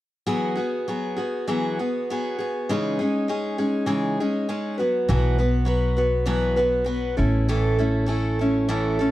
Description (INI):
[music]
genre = folk rock and heartland rock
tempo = 100 BPM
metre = 4/4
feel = straight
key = E major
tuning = A4 = 440 Hz
[part]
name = picked steel-string acoustic guitar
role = accompaniment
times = 0.3-9.1 s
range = A2 to B4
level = -22 LUFS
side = equal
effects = none
[part]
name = upright bass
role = bass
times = 5.1-9.1 s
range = A1 to B1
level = -23 LUFS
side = equal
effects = none
[sound]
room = light reverb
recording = dark, warm production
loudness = -21 LUFS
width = side -15 dB against mid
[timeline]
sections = 0.3-9.1 A section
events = none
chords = 0.3 Eadd9; 2.7 C#madd9; 4.8 Bsus4; 7.2 A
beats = | 0.28 0.88 1.48 2.09 | 2.69 3.29 3.89 4.49 | 5.09 5.69 6.29 6.89 | 7.48 8.08 8.68